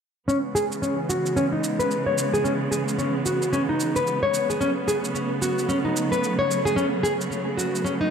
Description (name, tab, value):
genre	organic downtempo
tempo	111 BPM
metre	4/4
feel	swing 60% on 16ths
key	C# minor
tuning	A4 = 440 Hz
part	warm studio string section	sustained chords	0.3-8.1 s	C#3 to B3	-27 LUFS	right 2 dB	low-pass filter
part	nylon-string guitar	arpeggios	0.3-8.1 s	C#4 to C#5	-23 LUFS	left 1 dB	low-pass filter, tape echo
part	shaker	drums	0.3-8.0 s	none	-33 LUFS	right 4 dB	overdrive
room	moderate lush hall reverb, RT60 2.6 s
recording	none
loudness	-21 LUFS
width	side -7 dB against mid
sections	0.3-8.1 A section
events	filter sweep on nylon-string guitar 0.3-8.1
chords	0.3 C#m7; 4.6 Bsus2